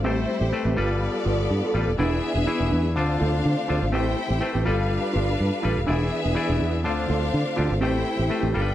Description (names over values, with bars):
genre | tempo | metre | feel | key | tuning
disco | 124 BPM | 4/4 | straight | A minor | A4 = 440 Hz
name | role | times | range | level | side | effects
clear studio string section | second line | 0.0-8.7 s | G3 to G5 | -28 LUFS | left 1 dB | none
mellow electric guitar | accompaniment | 0.0-8.7 s | C4 to C5 | -30 LUFS | right 4 dB | spring reverb
overdriven clav | accompaniment | 0.0-8.7 s | D3 to E5 | -29 LUFS | left 3 dB | none
tonewheel organ | sustained chords | 0.0-8.7 s | D3 to B4 | -31 LUFS | left 1 dB | chorus vibrato, slow rotary speaker
fingered electric bass | bass | 0.0-8.7 s | D#1 to D3 | -24 LUFS | equal | none
room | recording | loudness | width
little or no reverb | dry, close 1970s-style studio recording, lossy compression artefacts | -21 LUFS | side -12 dB against mid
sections
0.0-8.7 A section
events
none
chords
0.0 Am9; 0.8 G9; 2.0 E7; 3.0 Dm7; 3.9 Am9; 4.7 G9; 5.9 E7; 6.8 Dm7; 7.8 Am9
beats
| 0.05 0.53 1.02 1.50 | 1.99 2.48 2.96 3.45 | 3.93 4.42 4.90 5.39 | 5.87 6.36 6.85 7.33 | 7.82 8.30